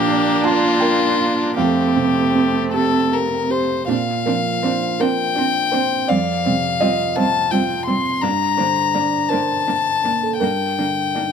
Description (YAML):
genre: neoclassical piano and strings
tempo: 52-56 BPM (dotted quarters)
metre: 6/8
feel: rubato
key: Bb major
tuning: A4 = 440 Hz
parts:
  - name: warm violin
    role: melody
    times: 0.0-11.3 s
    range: F4 to C6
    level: -20 LUFS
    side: left 8 dB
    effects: none
  - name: warm cello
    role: second line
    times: 0.0-11.2 s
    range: G3 to C4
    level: -25 LUFS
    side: right 5 dB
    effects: none
  - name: dark viola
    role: accompaniment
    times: 0.0-11.2 s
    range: C4 to D4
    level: -22 LUFS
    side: right 3 dB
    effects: none
  - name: felt-muted upright piano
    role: accompaniment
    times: 0.0-11.3 s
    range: F2 to Bb5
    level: -22 LUFS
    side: right 4 dB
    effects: none
room: light reverb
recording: none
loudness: -16 LUFS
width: side -7 dB against mid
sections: 0.0-3.9 A section; 3.9-11.3 B section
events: none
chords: 0.0 Bb; 1.6 Fadd9; 3.9 Bbadd9; 6.1 Fsus2; 8.2 Gm; 10.4 Ebmaj7/G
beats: 0.45 | 1.58 2.74 | 3.88 5.00 | 6.09 7.17 | 8.24 9.32 | 10.42